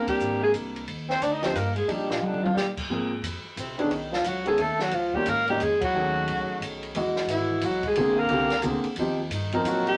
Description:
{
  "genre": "jazz, small-group swing and bop",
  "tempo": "178 BPM",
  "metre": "3/4",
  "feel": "swing 64% on 8ths",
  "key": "unclear",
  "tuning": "A4 = 440 Hz",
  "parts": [
    { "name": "warm alto saxophone", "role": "melody", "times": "0.0-10.0 s", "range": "Bb3 to Eb5", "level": "-29 LUFS", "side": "equal", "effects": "none" },
    { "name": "breathy tenor saxophone", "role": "second line", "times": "0.0-10.0 s", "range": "Bb2 to Eb4", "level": "-34 LUFS", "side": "equal", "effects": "none" },
    { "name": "warm baby grand piano", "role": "accompaniment", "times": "0.0-10.0 s", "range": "D3 to D#5", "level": "-31 LUFS", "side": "equal", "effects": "none" },
    { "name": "upright bass", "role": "bass", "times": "0.0-10.0 s", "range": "E1 to C3", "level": "-38 LUFS", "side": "equal", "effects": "none" },
    { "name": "compact cocktail drum kit", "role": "drums", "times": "0.1-9.9 s", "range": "crash cymbal, hi-hat, kick drum, ride cymbal, snare drum, toms", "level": "-36 LUFS", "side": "equal", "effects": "none" }
  ],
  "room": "wet studio reverb, RT60 0.6 s",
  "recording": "none",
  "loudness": "-26 LUFS",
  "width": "mono",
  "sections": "0.0-2.9 A section; 2.9-10.0 B section",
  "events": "band accent 0.0, 5.8; drum fill 2.2-2.6",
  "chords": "0.0 Bb9; 0.9 Ebmaj9; 2.9 Ab69; 3.9 B9; 4.9 Db69; 5.9 B13; 7.0 Emaj9; 8.0 Bb9; 9.0 Eb69"
}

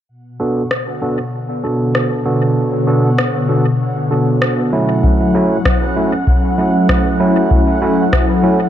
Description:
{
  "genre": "ambient dub",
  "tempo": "97 BPM",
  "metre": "4/4",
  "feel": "swing 59% on 16ths",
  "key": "B minor",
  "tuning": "A4 = 435 Hz",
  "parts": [
    { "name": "warm analog pad", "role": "sustained chords", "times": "0.1-8.7 s", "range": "B2 to F#5", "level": "-17 LUFS", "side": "left 1 dB", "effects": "chorus" },
    { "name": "bubbling stepped-filter texture", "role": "texture", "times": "0.1-8.7 s", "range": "F#5", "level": "-25 LUFS", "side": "right 4 dB", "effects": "chorus, built-in reverb" },
    { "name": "overdriven tine electric piano", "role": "stabs", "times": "0.4-8.6 s", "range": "F#3 to A4", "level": "-17 LUFS", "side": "right 1 dB", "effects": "low-pass filter, dub echo" },
    { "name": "electronic rim click", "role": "drums", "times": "0.7-8.3 s", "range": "none", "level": "-22 LUFS", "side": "left 1 dB", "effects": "dub echo" },
    { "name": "electronic kick drum", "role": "drums", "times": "5.0-8.3 s", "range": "none", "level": "-16 LUFS", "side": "equal", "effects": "none" }
  ],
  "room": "moderate spring reverb, RT60 2.4 s",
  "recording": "none",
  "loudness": "-13 LUFS",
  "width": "side -10 dB against mid",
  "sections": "0.1-8.7 A section",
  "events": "filter sweep on analog synth pad 0.1-8.7",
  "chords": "0.1 Bm7; 5.0 F#m7"
}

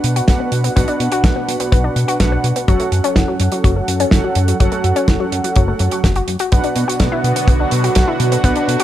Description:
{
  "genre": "italo disco",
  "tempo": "125 BPM",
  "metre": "4/4",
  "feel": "straight",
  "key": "unclear",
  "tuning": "A4 = 441 Hz",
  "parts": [
    { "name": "analog synth brass", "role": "stabs", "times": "0.0-8.8 s", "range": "B2 to F#5", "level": "-20 LUFS", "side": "right 2 dB", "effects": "chorus, cassette tape, ping-pong delay" },
    { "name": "chorused synth bass", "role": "bass", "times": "0.0-8.8 s", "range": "F#1 to B2", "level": "-19 LUFS", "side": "equal", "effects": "none" },
    { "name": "damped 70s drum kit", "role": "drums", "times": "0.0-8.8 s", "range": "hi-hat, snare drum", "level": "-21 LUFS", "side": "right 2 dB", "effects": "none" },
    { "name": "analog pluck", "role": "arpeggios", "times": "0.2-8.8 s", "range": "E3 to F#4", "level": "-22 LUFS", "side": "left 5 dB", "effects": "chorus, ping-pong delay" },
    { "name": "kick drum", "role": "drums", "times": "0.3-8.5 s", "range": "none", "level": "-14 LUFS", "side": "equal", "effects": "none" },
    { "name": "lush unison pad", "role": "sustained chords", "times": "6.8-8.8 s", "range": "D3 to C#5", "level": "-22 LUFS", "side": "right 2 dB", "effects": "chorus, phaser" }
  ],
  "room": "light reverb",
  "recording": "none",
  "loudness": "-13 LUFS",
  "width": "side -12 dB against mid",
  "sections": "0.0-8.8 A section",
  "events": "none",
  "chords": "0.0 Bm; 2.7 F#m; 6.5 Bm"
}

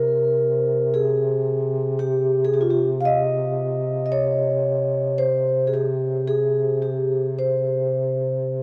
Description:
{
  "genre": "caucasian folk, Caucasian lament",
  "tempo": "56 BPM",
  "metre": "3/4",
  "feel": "rubato",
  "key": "C phrygian",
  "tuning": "A4 = 440 Hz",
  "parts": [
    { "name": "vibraphone with soft mallets", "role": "melody", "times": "0.0-8.6 s", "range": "F4 to F5", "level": "-23 LUFS", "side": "equal", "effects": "none" },
    { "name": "dark duduk", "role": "drone", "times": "0.0-8.6 s", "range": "C3", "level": "-28 LUFS", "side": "equal", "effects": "none" }
  ],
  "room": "wet church reverb, RT60 4.2 s",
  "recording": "dark, warm production",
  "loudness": "-22 LUFS",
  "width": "mono",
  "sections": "0.0-8.6 A section",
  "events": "none",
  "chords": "none"
}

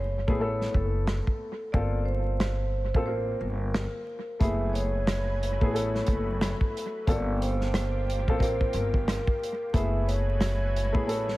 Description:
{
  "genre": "hip hop, boom-bap hip-hop",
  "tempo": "90 BPM",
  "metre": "4/4",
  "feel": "swing 61% on 16ths",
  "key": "unclear",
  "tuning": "A4 = 441 Hz",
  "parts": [
    { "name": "vibraphone with soft mallets", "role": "melody", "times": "0.0-11.4 s", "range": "A4 to E5", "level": "-33 LUFS", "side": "right 1 dB", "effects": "high-pass filter, low-pass filter, analog delay" },
    { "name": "dark upright piano", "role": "accompaniment", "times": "0.0-11.4 s", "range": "A3 to Bb4", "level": "-33 LUFS", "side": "left 2 dB", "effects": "cassette tape, high-pass filter, low-pass filter, analog delay" },
    { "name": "upright bass", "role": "bass", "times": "0.0-11.3 s", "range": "F#1 to A1", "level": "-29 LUFS", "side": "equal", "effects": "none" },
    { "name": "warm soul drum kit", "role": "drums", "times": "0.3-11.3 s", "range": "hi-hat, kick drum, rim click, snare drum", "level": "-28 LUFS", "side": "equal", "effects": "none" },
    { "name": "lush unison pad", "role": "sustained chords", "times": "4.7-11.4 s", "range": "F#3 to G#5", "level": "-39 LUFS", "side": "equal", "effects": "chorus, high-pass filter, low-pass filter" }
  ],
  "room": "small room ambience",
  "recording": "echo-heavy mix, vinyl crackle",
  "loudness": "-25 LUFS",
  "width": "side -18 dB against mid",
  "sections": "0.0-11.4 A section",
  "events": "break 0.0-4.4",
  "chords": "0.0 F#m11; 1.7 Gm11; 4.4 F#m11; 7.1 Gm11; 9.7 F#m11"
}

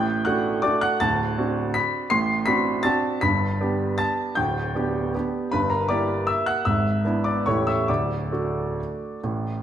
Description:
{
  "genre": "classical, piano waltz",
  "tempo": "126-174 BPM",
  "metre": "3/4",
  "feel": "rubato",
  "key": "D major",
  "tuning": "A4 = 440 Hz",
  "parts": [
    { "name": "bright baby grand piano", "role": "solo", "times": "0.0-9.6 s", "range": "A0 to C7", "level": "-21 LUFS", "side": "equal", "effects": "none" }
  ],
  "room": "wet recital hall reverb, RT60 1.3 s",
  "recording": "none",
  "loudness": "-21 LUFS",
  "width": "side -10 dB against mid",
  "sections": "0.0-9.6 A section",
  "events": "none",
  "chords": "0.0 D; 1.0 D7; 3.2 G; 5.5 Em7b5/G; 6.7 E7/G#; 7.5 A7; 7.9 D"
}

